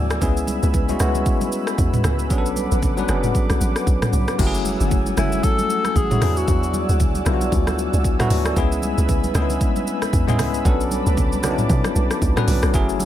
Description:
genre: amapiano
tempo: 115 BPM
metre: 4/4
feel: swing 58% on 16ths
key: unclear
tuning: A4 = 440 Hz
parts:
  - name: bell-like tine electric piano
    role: accompaniment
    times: 0.0-13.1 s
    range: F#3 to G#5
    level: -23 LUFS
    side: left 3 dB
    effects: medium stereo tremolo
  - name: airy breathy pad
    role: sustained chords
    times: 0.0-13.1 s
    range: A3 to E6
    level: -28 LUFS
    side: right 2 dB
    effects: chorus
  - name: hollow log drum bass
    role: bass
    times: 0.0-13.1 s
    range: F#1 to B2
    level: -22 LUFS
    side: equal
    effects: none
  - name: afro-pop drum kit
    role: drums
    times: 0.1-13.1 s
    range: crash cymbal, hi-hat, kick drum, rim click, shaker, toms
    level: -22 LUFS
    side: equal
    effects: none
  - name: congas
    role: percussion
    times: 0.5-13.1 s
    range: none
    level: -30 LUFS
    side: right 3 dB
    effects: none
  - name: breathy alto saxophone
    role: melody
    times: 5.2-6.9 s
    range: E4 to A4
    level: -24 LUFS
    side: left 2 dB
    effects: ping-pong delay
room: little or no reverb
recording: none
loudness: -17 LUFS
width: side -12 dB against mid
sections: 0.0-4.4 A section; 4.4-13.1 B section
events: drop 4.4-13.1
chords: 0.2 C#m7; 2.3 Bm9; 4.4 F#m9; 6.2 E9; 8.6 C#m7; 10.7 Bm9

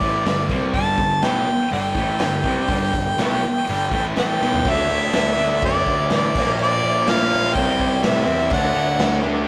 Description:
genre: garage rock duo or trio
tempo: 123 BPM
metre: 4/4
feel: straight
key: unclear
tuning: A4 = 437 Hz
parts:
  - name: clear harmonica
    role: melody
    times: 0.0-9.2 s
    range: D5 to A5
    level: -24 LUFS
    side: equal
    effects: overdrive, analog delay
  - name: thick fuzz guitar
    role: riff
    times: 0.0-9.5 s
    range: G2 to D4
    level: -25 LUFS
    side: equal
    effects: distortion
  - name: fuzz picked electric bass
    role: bass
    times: 0.0-9.5 s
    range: G1 to A2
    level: -30 LUFS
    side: equal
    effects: overdrive
  - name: raw garage drum kit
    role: drums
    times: 0.0-9.4 s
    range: crash cymbal, hi-hat, kick drum, snare drum, toms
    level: -25 LUFS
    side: equal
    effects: none
room: light reverb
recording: rough rehearsal-room recording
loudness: -20 LUFS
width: mono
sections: 0.0-4.6 A section; 4.6-9.5 B section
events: drum fill 4.4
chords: 0.0 G; 4.6 D; 6.3 Bb; 7.6 C; 8.5 D

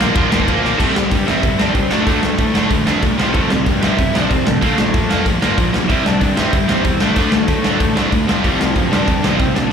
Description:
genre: punk rock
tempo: 188 BPM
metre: 4/4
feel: straight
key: F major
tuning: A4 = 439 Hz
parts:
  - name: distorted electric guitar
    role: riff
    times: 0.0-9.7 s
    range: F2 to D4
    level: -21 LUFS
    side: left 10 dB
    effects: distortion, slapback echo
  - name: heavy high-gain guitar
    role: riff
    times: 0.0-9.6 s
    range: Bb2 to E4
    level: -23 LUFS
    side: left 2 dB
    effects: distortion, slapback echo
  - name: tight distorted guitar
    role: riff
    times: 0.0-9.7 s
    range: F2 to D4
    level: -20 LUFS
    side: right 12 dB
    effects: distortion, slapback echo
  - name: fuzz picked electric bass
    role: bass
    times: 0.0-9.7 s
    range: F1 to Bb2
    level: -22 LUFS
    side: equal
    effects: overdrive
  - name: big rock drum kit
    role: drums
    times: 0.0-9.6 s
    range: crash cymbal, hi-hat, kick drum, ride cymbal, snare drum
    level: -18 LUFS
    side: equal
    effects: none
  - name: lead guitar through a small cranked amp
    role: melody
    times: 0.8-9.7 s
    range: F3 to E5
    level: -23 LUFS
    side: right 1 dB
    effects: overdrive, slapback echo
room: small room ambience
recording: live gig heard through the venue's PA, club reverb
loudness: -13 LUFS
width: side -7 dB against mid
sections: 0.8-9.7 A section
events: drum fill 0.6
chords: 0.0 Bb; 0.8 C; 1.9 Dm; 3.2 F/C; 4.6 Bb; 5.9 C; 7.0 Dm; 8.3 F/C

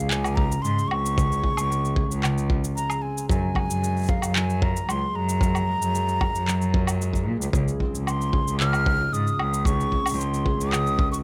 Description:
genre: folktronica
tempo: 113 BPM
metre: 4/4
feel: straight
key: Db major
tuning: A4 = 440 Hz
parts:
  - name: mellow hollow jazz flute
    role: melody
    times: 0.0-11.2 s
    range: F5 to F6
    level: -30 LUFS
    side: equal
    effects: tape echo
  - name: concert harp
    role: arpeggios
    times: 0.0-11.2 s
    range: Db3 to Bb4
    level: -32 LUFS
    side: equal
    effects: vintage 12-bit sampler grit, tape echo
  - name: rich cello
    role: bass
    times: 0.0-11.2 s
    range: Db2 to Bb2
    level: -29 LUFS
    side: equal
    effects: none
  - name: electronic handclaps, shaker and woodblock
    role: drums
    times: 0.1-11.2 s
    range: none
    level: -32 LUFS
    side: equal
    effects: overdrive
  - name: kick drum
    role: drums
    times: 0.4-11.1 s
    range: none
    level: -27 LUFS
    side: equal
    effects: none
room: light reverb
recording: none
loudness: -24 LUFS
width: mono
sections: 0.0-11.2 A section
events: none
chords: 0.0 Dbmaj7; 3.3 Gbmaj9; 7.5 Dbmaj7

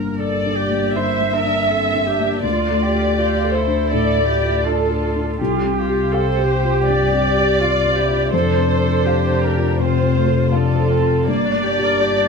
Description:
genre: neoclassical piano and strings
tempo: 81 BPM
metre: 4/4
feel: rubato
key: D minor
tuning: A4 = 440 Hz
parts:
  - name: felt-muted upright piano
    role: accompaniment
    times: 0.0-12.3 s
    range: C2 to F5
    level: -21 LUFS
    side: left 5 dB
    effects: none
  - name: muted viola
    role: accompaniment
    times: 0.0-12.3 s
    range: Bb3 to C5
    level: -26 LUFS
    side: right 3 dB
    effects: none
  - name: muted double bass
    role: bass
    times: 0.0-12.3 s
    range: F1 to D2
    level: -22 LUFS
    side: left 1 dB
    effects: none
  - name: muted symphonic violin section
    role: melody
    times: 0.2-12.3 s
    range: A4 to E5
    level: -19 LUFS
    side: equal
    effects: plate reverb
  - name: muted cello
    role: second line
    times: 1.0-12.3 s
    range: A3 to G4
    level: -25 LUFS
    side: right 7 dB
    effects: none
room: moderate studio reverb, RT60 0.8 s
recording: small room ambience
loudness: -15 LUFS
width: side -5 dB against mid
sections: 0.0-12.3 A section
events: none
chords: 0.0 Gm; 2.4 Dm; 5.4 Csus4; 8.3 F; 11.3 Gm

